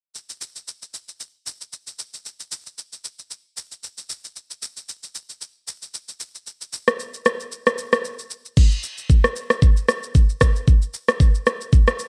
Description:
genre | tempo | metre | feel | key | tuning
amapiano | 114 BPM | 4/4 | swing 55% on 16ths | none | none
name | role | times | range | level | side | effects
smooth R&B drum kit | drums | 0.1-12.1 s | crash cymbal, kick drum, rim click, shaker | -21 LUFS | equal | cassette tape
room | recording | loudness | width
little or no reverb | home recording on cassette | -19 LUFS | mono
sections
0.1-8.6 A section; 8.6-12.1 B section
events
none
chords
none

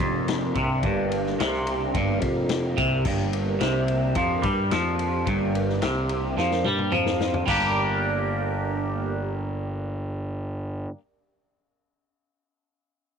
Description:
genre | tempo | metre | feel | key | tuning
psychedelic rock | 108 BPM | 4/4 | straight | G minor | A4 = 440 Hz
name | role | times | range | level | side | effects
phased analog pad | sustained chords | 0.0-10.5 s | Bb3 to Bb4 | -33 LUFS | right 10 dB | phaser, chorus
twangy electric guitar | riff | 0.0-11.0 s | F2 to G4 | -25 LUFS | equal | phaser, double-tracked left and right
fuzz picked electric bass | bass | 0.0-10.9 s | F1 to G2 | -29 LUFS | equal | overdrive
vintage drum kit | drums | 0.0-7.6 s | crash cymbal, kick drum, ride cymbal, snare drum, toms | -30 LUFS | left 4 dB | none
room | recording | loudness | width
light reverb, small room ambience | 1960s-style stereo | -22 LUFS | side -6 dB against mid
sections
0.0-7.5 A section; 7.5-9.7 B section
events
drum fill 6.4-7.5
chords
0.0 Gm

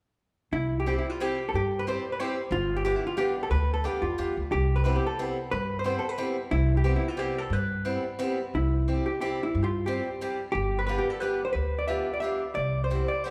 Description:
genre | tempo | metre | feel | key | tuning
musette waltz | 179 BPM | 3/4 | swing 54% on 8ths, rubato | C major | A4 = 440 Hz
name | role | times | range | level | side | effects
hollow-body jazz guitar | melody | 0.5-13.3 s | E4 to E5 | -32 LUFS | equal | none
upright bass | bass | 0.5-13.0 s | G1 to G2 | -31 LUFS | equal | none
picked acoustic archtop guitar | accompaniment | 0.9-13.3 s | G3 to G4 | -34 LUFS | equal | none
room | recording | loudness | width
wet recital hall reverb, RT60 1.6 s | recorded in a church or concert hall | -28 LUFS | mono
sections
0.5-8.5 A section; 8.5-13.3 A section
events
none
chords
0.5 C; 2.5 G7; 4.5 Cmaj7; 8.5 C; 10.5 G7; 12.6 Cmaj7

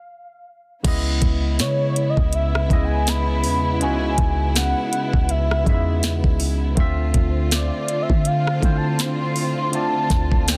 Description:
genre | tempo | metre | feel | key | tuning
contemporary R&B | 81 BPM | 4/4 | swing 58% on 16ths | unclear | A4 = 440 Hz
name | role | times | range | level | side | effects
warm velvety synth lead | melody | 0.0-10.6 s | C#5 to C6 | -28 LUFS | equal | chorus
barky tine electric piano | accompaniment | 0.8-10.6 s | C#3 to E5 | -28 LUFS | equal | none
warm studio string section | sustained chords | 0.8-10.6 s | C#3 to F4 | -32 LUFS | equal | sidechain pumping
clean 808-style bass | bass | 0.8-10.6 s | C#2 to D3 | -24 LUFS | equal | none
smooth R&B drum kit | drums | 0.8-10.6 s | crash cymbal, hi-hat, kick drum, rim click, snare drum | -23 LUFS | equal | none
room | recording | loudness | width
digital ambience | dense, heavily limited modern master | -20 LUFS | mono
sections
0.8-10.6 A section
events
stop 0.0-0.8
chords
0.0 N.C.; 0.8 C#m7; 6.8 Dm7

